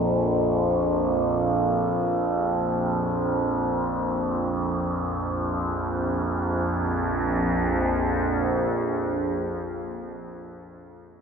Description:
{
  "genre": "world meditative, free-time meditation music",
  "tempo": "free time",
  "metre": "none",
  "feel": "none",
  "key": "unclear",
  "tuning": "A4 = 440 Hz",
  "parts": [
    { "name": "overtone-sweeping drone", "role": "solo", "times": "0.0-9.8 s", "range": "Bb1 to F2", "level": "-23 LUFS", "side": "right 1 dB", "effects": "chorus, built-in reverb, ping-pong delay" }
  ],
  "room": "wet lush hall reverb, RT60 3.2 s",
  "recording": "none",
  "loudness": "-22 LUFS",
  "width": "side -6 dB against mid",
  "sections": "0.0-6.2 A section; 6.2-10.0 B section",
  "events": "none",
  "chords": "none",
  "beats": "free time"
}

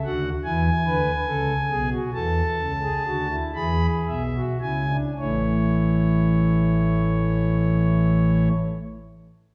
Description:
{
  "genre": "classical, baroque-style 3-part fugue for pipe organ",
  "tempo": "34-50 BPM (dotted quarters)",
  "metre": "6/8",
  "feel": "straight",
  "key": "A major",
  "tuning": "A4 = 440 Hz",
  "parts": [
    { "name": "pipe organ, principal", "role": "solo", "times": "0.0-8.5 s", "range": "A1 to B5", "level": "-23 LUFS", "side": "equal", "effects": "none" }
  ],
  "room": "wet recital hall reverb, RT60 1.4 s",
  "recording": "heard from further back in the room",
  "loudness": "-23 LUFS",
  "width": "mono",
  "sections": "0.0-5.2 A section; 5.2-8.7 B section",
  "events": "slowing down 0.0-5.2",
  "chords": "0.0 N.C.; 0.8 Bm7; 2.1 E7sus4; 3.5 E7; 5.2 A",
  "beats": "0.85 | 2.13 3.55 | 5.18 6.95"
}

